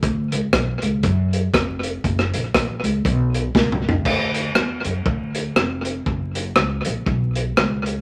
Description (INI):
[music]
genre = ska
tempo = 119 BPM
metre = 4/4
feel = swing 58% on 8ths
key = D major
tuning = A4 = 440 Hz
[part]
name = upright bass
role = bass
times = 0.0-8.0 s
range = F1 to F#2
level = -25 LUFS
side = equal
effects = none
[part]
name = crunchy breakbeat drum kit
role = drums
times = 0.0-8.0 s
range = crash cymbal, hi-hat, kick drum, rim click, snare drum, toms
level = -23 LUFS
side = equal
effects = tape echo
[sound]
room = wet club reverb, RT60 0.8 s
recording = vinyl crackle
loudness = -21 LUFS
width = mono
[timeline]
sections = 0.0-4.1 A section; 4.1-8.0 B section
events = drum fill 3.6-4.1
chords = none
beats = | 0.03 0.53 1.04 1.54 | 2.04 2.54 3.05 3.55 | 4.05 4.56 5.06 5.56 | 6.07 6.57 7.07 7.58